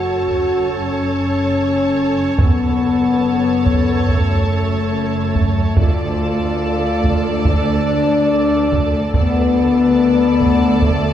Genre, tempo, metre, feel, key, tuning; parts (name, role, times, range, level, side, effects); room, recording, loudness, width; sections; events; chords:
cinematic, epic orchestral film score; 71 BPM; 4/4; straight; F# minor; A4 = 440 Hz
rich symphonic violin section; melody; 0.0-11.1 s; A5; -30 LUFS; equal
rich symphonic violin section; second line; 0.0-11.1 s; C#5 to D5; -26 LUFS; right 1 dB
rich symphonic viola section; accompaniment; 0.0-11.1 s; A4; -28 LUFS; right 3 dB
mellow French horn section; sustained chords; 0.0-11.1 s; A3 to F#4; -17 LUFS; left 3 dB
clear symphonic cello section; bass; 0.0-11.1 s; D2 to F#2; -23 LUFS; right 2 dB
rich symphonic double bass section; bass; 0.0-11.1 s; F#1 to D2; -23 LUFS; right 2 dB
taiko ensemble; drums; 0.3-11.1 s; -19 LUFS; right 1 dB
wet scoring stage reverb, RT60 1.6 s; heard from further back in the room; -14 LUFS; side -10 dB against mid
0.0-11.1 A section
0.0 F#m; 5.8 Dm